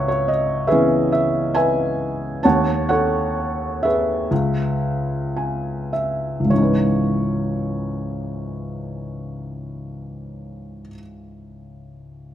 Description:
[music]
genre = classical, lyrical solo piano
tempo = 51-73 BPM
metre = 4/4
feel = rubato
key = C# minor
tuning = A4 = 440 Hz
[part]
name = felt-muted upright piano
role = solo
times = 0.0-12.3 s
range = C#2 to A5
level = -19 LUFS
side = equal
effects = none
[sound]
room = moderate scoring stage reverb, RT60 1.9 s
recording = none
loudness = -18 LUFS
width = side -11 dB against mid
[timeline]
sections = 0.0-6.5 A section; 6.5-11.1 B section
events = slowing down 0.0-6.5; felt piano fill 4.8-6.5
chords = 0.0 C#m7; 2.4 D#m7b5; 4.3 C#m7; 6.5 C#m9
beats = 0.70 1.55 | 2.44 3.35 4.31 5.36 | 6.51 7.67 8.80 9.92

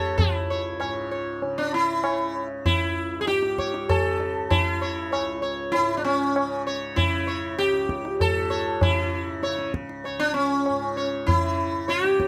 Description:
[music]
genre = indian classical, Hindustani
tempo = 97 BPM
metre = 7/4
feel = straight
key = C# raga todi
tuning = A4 = 440 Hz
[part]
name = sitar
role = melody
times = 0.0-12.3 s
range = C#4 to C#5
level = -26 LUFS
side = equal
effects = none
[part]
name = tanpura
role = drone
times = 0.0-12.3 s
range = C#2 to C#3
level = -37 LUFS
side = equal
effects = none
[part]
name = tabla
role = percussion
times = 0.2-12.3 s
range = none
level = -30 LUFS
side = equal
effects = none
[sound]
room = light reverb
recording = close, detailed microphones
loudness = -25 LUFS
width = mono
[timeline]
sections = 0.0-12.3 A section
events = none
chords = none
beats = | 0.19 0.81 1.42 2.04 2.66 3.28 3.89 | 4.51 5.12 5.74 6.36 6.97 7.59 8.20 | 8.82 9.43 10.05 10.66 11.28 11.89

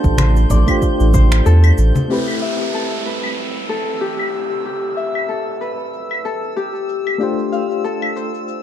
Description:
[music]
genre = sunset chillout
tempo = 94 BPM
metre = 4/4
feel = swing 56% on 16ths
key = A minor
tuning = A4 = 440 Hz
[part]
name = soft electric-piano-like synth keys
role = accompaniment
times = 0.0-8.6 s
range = A3 to C5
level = -23 LUFS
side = moving between left 4 dB and right 6 dB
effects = chorus, tremolo, auto-pan, ping-pong delay
[part]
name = Celtic harp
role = arpeggios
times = 0.0-8.6 s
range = G4 to A5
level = -22 LUFS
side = left 4 dB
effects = low-pass filter, ping-pong delay
[part]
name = warm sub bass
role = bass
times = 0.0-1.9 s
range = A1 to E2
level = -11 LUFS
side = equal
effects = none
[part]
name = electronic cabasa, finger snaps and claves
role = drums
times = 0.0-8.6 s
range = none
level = -24 LUFS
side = equal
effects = low-pass filter on perc, low-pass filter on snare, low-pass filter on room
[part]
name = electronic kick drum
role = drums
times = 0.0-1.3 s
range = none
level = -17 LUFS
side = equal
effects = none
[part]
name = drifting glass-harmonics texture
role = texture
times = 0.0-8.6 s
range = E6 to G6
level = -32 LUFS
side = equal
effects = chorus, built-in reverb
[part]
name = congas and bongos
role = percussion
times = 0.2-2.1 s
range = none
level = -22 LUFS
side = left 1 dB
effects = none
[part]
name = downlifter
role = sound effects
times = 2.1-7.2 s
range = none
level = -29 LUFS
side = right 3 dB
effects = none
[sound]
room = light reverb, digital ambience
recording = dark, warm production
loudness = -15 LUFS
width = side -10 dB against mid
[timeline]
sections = 0.0-2.1 A section; 2.1-8.6 B section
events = filter sweep on harp 0.0-2.1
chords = 0.0 F6; 2.1 Am9; 7.2 G9sus4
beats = 0.18 0.82 1.46 | 2.10 2.74 3.38 4.01 | 4.65 5.29 5.93 6.57 | 7.21 7.84 8.48

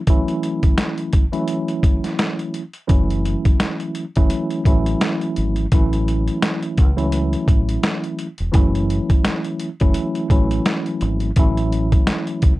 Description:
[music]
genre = hip hop, boom-bap hip-hop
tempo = 85 BPM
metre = 4/4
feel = swing 58% on 16ths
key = F# minor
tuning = A4 = 438 Hz
[part]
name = mellow tine electric piano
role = accompaniment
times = 0.1-12.5 s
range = E3 to E4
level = -22 LUFS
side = equal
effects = medium stereo tremolo, high-pass filter, low-pass filter
[part]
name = boom bap sampler-style drum kit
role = drums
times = 0.1-12.6 s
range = hi-hat, kick drum, snare drum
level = -17 LUFS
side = equal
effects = none
[part]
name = deep dub fingered electric bass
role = bass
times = 2.9-12.6 s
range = E1 to C#2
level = -21 LUFS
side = equal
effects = none
[sound]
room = little or no reverb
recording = none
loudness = -17 LUFS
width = side -18 dB against mid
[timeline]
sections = 0.0-12.6 A section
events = none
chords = 0.0 F#m7; 5.7 A6; 8.5 F#m7; 11.4 A6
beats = | 0.07 0.78 1.49 2.19 | 2.90 3.60 4.31 5.01 | 5.72 6.43 7.13 7.84 | 8.54 9.25 9.96 10.66 | 11.37 12.07

